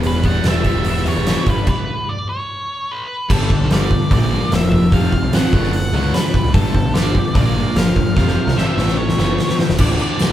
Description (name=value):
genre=classic rock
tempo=148 BPM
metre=4/4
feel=straight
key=unclear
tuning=A4 = 441 Hz
part: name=picked steel-string acoustic guitar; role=accompaniment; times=0.0-10.3 s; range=A2 to C5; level=-28 LUFS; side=right 3 dB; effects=none
part: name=distorted electric guitar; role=riff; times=0.0-10.3 s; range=D2 to B3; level=-25 LUFS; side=right 5 dB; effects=distortion
part: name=sludgy distorted guitar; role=riff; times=0.0-10.3 s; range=D2 to B3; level=-22 LUFS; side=left 5 dB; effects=overdrive
part: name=fuzz picked electric bass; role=bass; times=0.0-10.3 s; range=D1 to E2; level=-21 LUFS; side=equal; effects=overdrive
part: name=huge arena drum kit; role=drums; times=0.0-10.3 s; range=crash cymbal, hi-hat, kick drum, snare drum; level=-17 LUFS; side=equal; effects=none
part: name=octave-fuzz lead guitar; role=melody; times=0.1-10.3 s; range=A4 to F#5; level=-25 LUFS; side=equal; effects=distortion
part: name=bright tonewheel organ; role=sustained chords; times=3.3-10.3 s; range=A3 to F5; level=-33 LUFS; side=equal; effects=none
part: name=tambourine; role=percussion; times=9.8-10.3 s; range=none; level=-36 LUFS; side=left 6 dB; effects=none
room=wet large studio reverb, RT60 1.4 s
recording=band playing live in one room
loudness=-14 LUFS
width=side -12 dB against mid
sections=0.0-3.3 A section; 3.3-9.8 B section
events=stop 1.7-3.3; drum fill 8.2-9.8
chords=0.0 Em; 1.5 G; 2.5 N.C.; 3.3 Gadd9; 4.1 Bb; 4.9 Fadd9; 5.5 D/F#; 6.5 Gadd9; 7.4 Bb; 8.2 Fadd9; 8.8 Aadd9; 9.8 D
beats=| 0.04 0.44 0.85 1.26 | 1.67 2.08 2.49 2.89 | 3.30 3.71 4.11 4.52 | 4.92 5.33 5.74 6.14 | 6.54 6.95 7.36 7.76 | 8.17 8.57 8.98 9.38 | 9.79 10.20